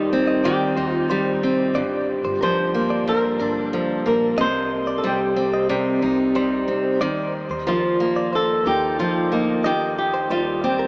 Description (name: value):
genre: acoustic pop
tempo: 91 BPM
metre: 4/4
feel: straight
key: unclear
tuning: A4 = 440 Hz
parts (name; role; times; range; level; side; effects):
- flamenco guitar; melody; 0.0-10.9 s; Eb4 to C5; -23 LUFS; equal; none
- picked steel-string acoustic guitar; accompaniment; 0.0-10.9 s; G2 to Eb4; -21 LUFS; equal; none
- upright bass; bass; 0.0-10.9 s; G1 to Eb2; -37 LUFS; equal; none
- direct-recorded clean electric guitar; arpeggios; 0.3-10.9 s; Bb4 to Eb5; -28 LUFS; equal; none
room: wet huge ambient reverb, RT60 8.5 s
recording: in a vast, echoing space, small speaker sound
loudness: -18 LUFS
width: side -31 dB against mid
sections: 0.0-10.9 A section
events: none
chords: 0.0 Cm/Eb; 1.8 Gm7; 4.4 Cm; 7.0 Ebsus2; 9.6 Cm/Eb